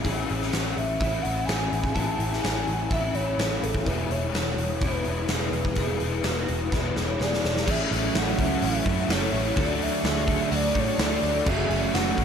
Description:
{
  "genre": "rock, shoegaze and dream pop",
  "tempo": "126 BPM",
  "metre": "4/4",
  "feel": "straight",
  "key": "A major",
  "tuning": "A4 = 440 Hz",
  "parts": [
    { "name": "picked twelve-string acoustic guitar", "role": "arpeggios", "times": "0.0-12.2 s", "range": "E4 to A4", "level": "-36 LUFS", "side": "right 6 dB", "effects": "ensemble chorus, diffuse ambient delay" },
    { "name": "electric guitar through a small old amp", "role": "riff", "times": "0.0-12.2 s", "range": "F#2 to D5", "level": "-34 LUFS", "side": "right 10 dB", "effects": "reverse reverb" },
    { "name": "raw garage guitar", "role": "riff", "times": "0.0-12.2 s", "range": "E2 to F#4", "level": "-30 LUFS", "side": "left 8 dB", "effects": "overdrive, ensemble chorus" },
    { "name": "vintage muted picked electric bass", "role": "bass", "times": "0.0-12.2 s", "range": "E1 to A2", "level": "-30 LUFS", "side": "equal", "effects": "none" },
    { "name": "huge arena drum kit", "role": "drums", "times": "0.0-12.2 s", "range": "crash cymbal, hi-hat, kick drum, snare drum", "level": "-28 LUFS", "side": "equal", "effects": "none" },
    { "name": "pure breathy sine lead", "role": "melody", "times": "0.8-12.2 s", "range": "A4 to A5", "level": "-30 LUFS", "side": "equal", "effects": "chorus, diffuse ambient delay" },
    { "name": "overdriven electric guitar", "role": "riff", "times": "7.7-12.2 s", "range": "F#2 to D4", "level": "-32 LUFS", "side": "left 1 dB", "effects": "wide subtle chorus" }
  ],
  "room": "moderate huge ambient reverb, RT60 6.4 s",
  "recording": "dreamy mix soaked in reverb",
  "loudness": "-23 LUFS",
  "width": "side -7 dB against mid",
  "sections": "0.0-7.7 A section; 7.7-12.2 B section",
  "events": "drum fill 6.7-7.7",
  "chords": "0.0 Amaj7; 3.9 E7; 7.7 A6; 9.6 D; 11.5 F#m7",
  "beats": "| 0.05 0.52 1.00 1.48 | 1.96 2.43 2.91 3.39 | 3.87 4.34 4.82 5.30 | 5.77 6.25 6.73 7.20 | 7.68 8.15 8.63 9.10 | 9.58 10.05 10.52 11.00 | 11.47 11.94"
}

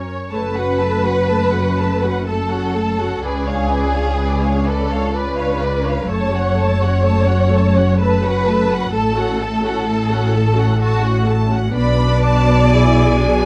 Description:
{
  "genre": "classical, slow romantic movement for string orchestra",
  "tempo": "63 BPM",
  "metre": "3/4",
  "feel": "rubato",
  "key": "F# minor",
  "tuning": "A4 = 440 Hz",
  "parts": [
    { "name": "warm symphonic violin section", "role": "melody", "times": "0.0-13.5 s", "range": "C#5 to B5", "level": "-29 LUFS", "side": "equal", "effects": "none" },
    { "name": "rich studio violin section", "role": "second line", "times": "0.0-13.5 s", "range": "F#4 to D5", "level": "-23 LUFS", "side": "equal", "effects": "none" },
    { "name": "warm symphonic viola section", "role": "accompaniment", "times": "0.0-13.5 s", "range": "A3 to C#5", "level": "-25 LUFS", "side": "equal", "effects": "none" },
    { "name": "dark studio double bass section", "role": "bass", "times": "0.0-13.5 s", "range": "F#1 to C#2", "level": "-22 LUFS", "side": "equal", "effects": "none" },
    { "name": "clear symphonic cello section", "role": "bass", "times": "0.3-13.5 s", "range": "C#2 to B2", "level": "-23 LUFS", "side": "equal", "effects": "none" }
  ],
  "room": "light reverb",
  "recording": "dark, warm production, faint mains hum",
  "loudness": "-17 LUFS",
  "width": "mono",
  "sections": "0.3-13.5 A section",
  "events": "none",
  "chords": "0.3 F#m; 3.2 C#7b9; 6.1 F#m; 8.9 F#m/A; 11.7 G#dim/B",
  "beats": "| 0.33 1.30 2.26 | 3.23 4.18 5.14 | 6.10 7.05 7.99 | 8.93 9.87 10.80 | 11.75 12.71"
}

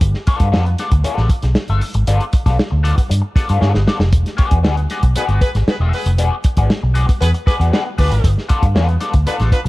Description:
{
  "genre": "funk",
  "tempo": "117 BPM",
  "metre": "4/4",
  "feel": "straight",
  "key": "unclear",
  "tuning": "A4 = 444 Hz",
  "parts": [
    { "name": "vintage muted fingered electric bass", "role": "bass", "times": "0.0-9.7 s", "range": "E1 to G2", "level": "-15 LUFS", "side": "equal", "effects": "none" },
    { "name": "warm soul drum kit", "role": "drums", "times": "0.0-9.7 s", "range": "hi-hat, kick drum, snare drum", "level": "-17 LUFS", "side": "equal", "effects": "none" },
    { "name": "electric guitar at the edge of break-up", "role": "accompaniment", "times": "0.3-9.7 s", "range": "B3 to E5", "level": "-23 LUFS", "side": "left 4 dB", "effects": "wah" },
    { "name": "clear horn section", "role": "second line", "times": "5.2-9.6 s", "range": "D4 to B4", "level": "-24 LUFS", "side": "left 1 dB", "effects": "none" }
  ],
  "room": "small room ambience",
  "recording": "dark, warm production",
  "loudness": "-13 LUFS",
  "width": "side -19 dB against mid",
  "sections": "0.0-9.7 A section",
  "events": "drum fill 3.6-4.1",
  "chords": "0.0 G9; 4.1 E9; 8.2 G9",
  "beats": "| 0.01 0.53 1.04 1.56 | 2.07 2.59 3.10 3.61 | 4.13 4.64 5.16 5.67 | 6.18 6.70 7.21 7.72 | 8.23 8.75 9.26"
}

